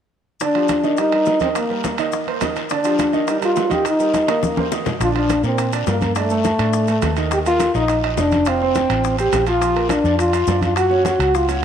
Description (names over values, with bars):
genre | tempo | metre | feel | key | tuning
latin, salsa | 208 BPM | 4/4 | straight | unclear | A4 = 440 Hz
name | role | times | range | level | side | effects
warm French horn | melody | 0.4-11.5 s | A3 to G4 | -18 LUFS | left 1 dB | slapback echo
clear grand piano | accompaniment | 0.4-11.6 s | D3 to Gb5 | -24 LUFS | right 8 dB | none
bongos | percussion | 0.4-11.5 s | none | -30 LUFS | left 12 dB | none
congas | percussion | 0.4-11.6 s | none | -30 LUFS | left 1 dB | none
guiro | percussion | 0.4-11.6 s | none | -35 LUFS | left 12 dB | none
maracas | percussion | 0.4-11.6 s | none | -37 LUFS | left 15 dB | none
timbales | percussion | 0.4-11.6 s | none | -28 LUFS | right 10 dB | none
vintage muted fingered electric bass | bass | 5.0-11.6 s | F1 to Bb2 | -22 LUFS | equal | none
room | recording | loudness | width
wet echo chamber reverb, RT60 2.7 s | 1960s-style stereo with parts hard left and right | -16 LUFS | side -8 dB against mid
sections
0.4-5.0 A section; 5.0-11.6 B section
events
drum fill 4.3-5.0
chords
0.4 Ebmaj9/D; 1.0 Eb; 2.1 Eb5; 2.7 Ebmaj9/D; 3.3 Eb; 4.4 Eb5; 5.0 Bbadd9; 6.2 Gsus2; 7.3 Ebsus2; 8.5 Fadd9; 9.6 Bb; 10.8 Gb5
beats
| 0.41 0.69 0.98 1.27 | 1.55 1.84 2.13 2.42 | 2.71 2.99 3.28 3.57 | 3.86 4.14 4.43 4.72 | 5.01 5.29 5.58 5.87 | 6.16 6.45 6.74 7.02 | 7.31 7.60 7.89 8.18 | 8.46 8.75 9.04 9.33 | 9.62 9.90 10.19 10.48 | 10.77 11.05 11.34 11.63